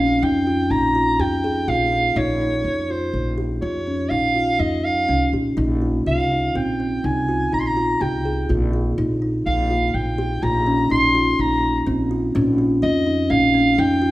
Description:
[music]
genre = contemporary instrumental, chamber music in an uneven meter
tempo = 124 BPM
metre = 7/4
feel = straight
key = Bb dorian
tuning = A4 = 444 Hz
[part]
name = mellow soprano saxophone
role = melody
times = 0.0-14.1 s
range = C5 to C6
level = -21 LUFS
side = right 1 dB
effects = none
[part]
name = kalimba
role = arpeggios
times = 0.0-14.1 s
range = C4 to Ab4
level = -21 LUFS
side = equal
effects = none
[part]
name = upright bass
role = bass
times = 0.0-14.1 s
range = Bb1 to F2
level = -24 LUFS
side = equal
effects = none
[sound]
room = wet recital hall reverb, RT60 1.3 s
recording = recorded in a church or concert hall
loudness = -17 LUFS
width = side -17 dB against mid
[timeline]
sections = 0.0-14.1 A section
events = none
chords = 0.0 Bbm; 5.6 F9sus4/Bb; 9.0 Ebsus2/Bb; 12.3 Bbm

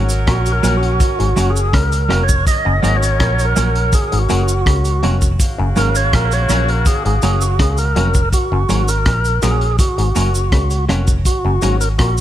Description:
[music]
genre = roots reggae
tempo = 82 BPM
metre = 4/4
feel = straight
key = F# major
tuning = A4 = 440 Hz
[part]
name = clear horn section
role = second line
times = 0.0-7.9 s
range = C#3 to A#4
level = -27 LUFS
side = right 1 dB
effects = tape echo
[part]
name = clean electric guitar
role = accompaniment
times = 0.0-11.7 s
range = F#3 to F#4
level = -22 LUFS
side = right 4 dB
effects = tape echo
[part]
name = auto-wah clav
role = riff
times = 0.0-12.2 s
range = E#2 to C#3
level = -27 LUFS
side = left 7 dB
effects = overdrive
[part]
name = bright upright piano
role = stabs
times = 0.0-11.8 s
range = C#4 to C#5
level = -29 LUFS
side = left 6 dB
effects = none
[part]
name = vintage muted fingered electric bass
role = bass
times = 0.0-12.2 s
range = E#1 to C#2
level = -16 LUFS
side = equal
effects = none
[part]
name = crunchy breakbeat drum kit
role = drums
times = 0.1-12.2 s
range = hi-hat, kick drum, rim click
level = -18 LUFS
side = equal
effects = none
[part]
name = cabasa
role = percussion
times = 0.1-12.2 s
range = none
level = -28 LUFS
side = right 5 dB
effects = none
[part]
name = tonewheel organ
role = melody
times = 0.3-12.2 s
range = F#4 to D#5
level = -20 LUFS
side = right 1 dB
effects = slow rotary speaker, tape echo
[sound]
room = little or no reverb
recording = none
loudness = -13 LUFS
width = side -12 dB against mid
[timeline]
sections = 0.0-8.3 A section; 8.3-12.2 B section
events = tonewheel organ solo 0.0-8.3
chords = 0.0 F#

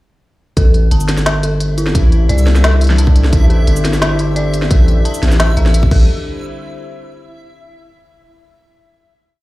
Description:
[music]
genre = half-time drum and bass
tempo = 174 BPM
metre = 4/4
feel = half-time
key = A minor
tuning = A4 = 443 Hz
[part]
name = dark analog pad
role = sustained chords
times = 0.6-7.4 s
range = D4 to E5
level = -25 LUFS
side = equal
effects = chorus, sidechain pumping
[part]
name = dark detuned synth bell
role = arpeggios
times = 0.6-6.1 s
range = E4 to A5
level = -23 LUFS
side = left 2 dB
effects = chorus, digital delay
[part]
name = long sustained 808-style bass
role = bass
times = 0.6-6.1 s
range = G1 to C2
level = -12 LUFS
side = equal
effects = none
[part]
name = electronic kick drum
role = drums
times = 0.6-6.0 s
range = none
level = -11 LUFS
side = equal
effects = none
[part]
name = organic electronic drum kit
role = drums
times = 0.6-6.0 s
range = crash cymbal, hi-hat, shaker, snare drum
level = -20 LUFS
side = left 1 dB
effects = none
[part]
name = backwards swelling texture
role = texture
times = 1.4-6.1 s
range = E4 to E5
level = -30 LUFS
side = left 1 dB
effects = built-in reverb
[sound]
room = digital ambience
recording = played on a big sound system in a bare room, large studio reverb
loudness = -10 LUFS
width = side -18 dB against mid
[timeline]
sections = 0.6-6.1 drop; 6.1-7.5 final chord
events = drop 0.6-6.1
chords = 0.6 Am; 5.9 A5; 6.1 D9sus4

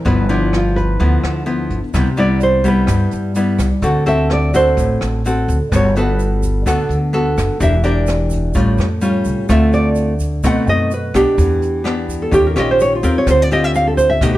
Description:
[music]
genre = bossa nova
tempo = 127 BPM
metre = 4/4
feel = straight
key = D minor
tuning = A4 = 440 Hz
[part]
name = nylon-string guitar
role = melody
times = 0.0-14.4 s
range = D4 to F#5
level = -17 LUFS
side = right 1 dB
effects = none
[part]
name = nylon-string guitar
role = accompaniment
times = 0.0-14.4 s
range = G2 to Bb4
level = -17 LUFS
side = left 1 dB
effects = none
[part]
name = upright bass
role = bass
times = 0.1-14.4 s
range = E1 to G2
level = -18 LUFS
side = equal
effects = none
[part]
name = jazz brush drum kit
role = drums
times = 0.1-14.3 s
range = hi-hat, kick drum, rim click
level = -23 LUFS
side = equal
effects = none
[part]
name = tube shaker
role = percussion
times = 1.9-14.4 s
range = none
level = -37 LUFS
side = right 6 dB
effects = none
[sound]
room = light reverb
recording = none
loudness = -13 LUFS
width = side -15 dB against mid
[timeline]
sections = 0.0-14.4 A section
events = nylon-string guitar solo 0.0-14.4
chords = 0.1 G6; 1.9 Cmaj7; 3.8 D7; 5.7 Gmaj9; 7.6 Em7b5; 8.5 A7b13; 9.5 Dm7; 10.4 B7b9; 11.4 Em7; 12.3 Eb9; 13.3 Dm7

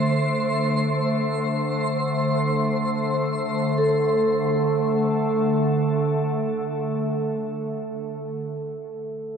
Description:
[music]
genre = ambient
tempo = free time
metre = none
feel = none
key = unclear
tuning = A4 = 441 Hz
[part]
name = organ-like drone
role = drone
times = 0.0-8.3 s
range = D3 to A3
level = -24 LUFS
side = equal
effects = ensemble chorus, built-in reverb
[part]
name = twinkling granular texture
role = texture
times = 0.0-3.8 s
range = C5 to C6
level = -27 LUFS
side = equal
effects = built-in reverb
[part]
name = vibraphone with medium mallets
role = arpeggios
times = 3.8-9.4 s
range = A4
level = -25 LUFS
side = right 3 dB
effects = tape echo
[sound]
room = wet cathedral reverb, RT60 6.7 s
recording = in a vast, echoing space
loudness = -21 LUFS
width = side -7 dB against mid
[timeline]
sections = 0.0-3.8 A section; 3.8-7.8 B section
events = none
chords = 0.0 D7(no3)

